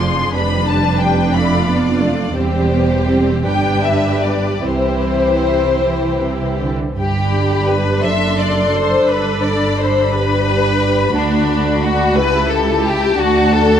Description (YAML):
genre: classical, slow romantic movement for string orchestra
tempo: 49-60 BPM (dotted quarters)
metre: 6/8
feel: rubato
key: C major, G major from 7.0 s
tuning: A4 = 443 Hz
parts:
  - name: warm symphonic violin section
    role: melody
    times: 0.0-13.8 s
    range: C5 to C6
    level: -21 LUFS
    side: left 5 dB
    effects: none
  - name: rich symphonic violin section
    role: second line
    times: 0.0-13.8 s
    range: D4 to E5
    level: -19 LUFS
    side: left 3 dB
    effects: none
  - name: rich symphonic viola section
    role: accompaniment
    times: 0.0-13.8 s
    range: E3 to A4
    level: -19 LUFS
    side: right 1 dB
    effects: none
  - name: rich studio cello section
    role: bass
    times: 0.0-13.8 s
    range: C#2 to E3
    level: -20 LUFS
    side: right 3 dB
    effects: none
  - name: rich studio double bass section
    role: bass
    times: 0.0-13.8 s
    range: E1 to D2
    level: -21 LUFS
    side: right 3 dB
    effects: none
room: moderate concert hall reverb, RT60 2.1 s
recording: close, detailed microphones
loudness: -13 LUFS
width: side -9 dB against mid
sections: 0.0-7.0 A section; 7.0-13.8 B section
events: none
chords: 0.3 G7/F; 2.4 C/E; 3.5 G; 4.7 C; 7.0 G; 8.1 D7/F#; 9.1 G; 11.2 D; 12.2 A7/C#; 13.2 D